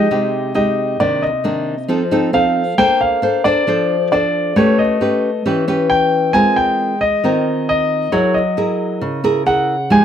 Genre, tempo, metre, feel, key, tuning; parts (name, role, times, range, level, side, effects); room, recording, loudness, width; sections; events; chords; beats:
bossa nova; 135 BPM; 4/4; straight; A4 = 439 Hz
warm concert grand piano; melody; 0.0-10.0 s; C#5 to Ab5; -17 LUFS; left 1 dB
nylon-string guitar; accompaniment; 0.0-10.0 s; C3 to C5; -16 LUFS; equal
little or no reverb; close, detailed microphones; -14 LUFS; side -9 dB against mid
0.0-10.0 A section
0.0 Fm9 (rootless); 1.0 Cm9; 1.9 F7; 2.8 Bbmaj9; 4.6 A9; 6.3 Ab69; 8.1 Gb9
0.11 0.55 | 1.00 1.44 1.89 2.33 | 2.78 3.22 3.67 4.11 | 4.56 5.00 5.45 5.89 | 6.33 6.78 7.23 7.67 | 8.12 8.56 9.01 9.45 | 9.90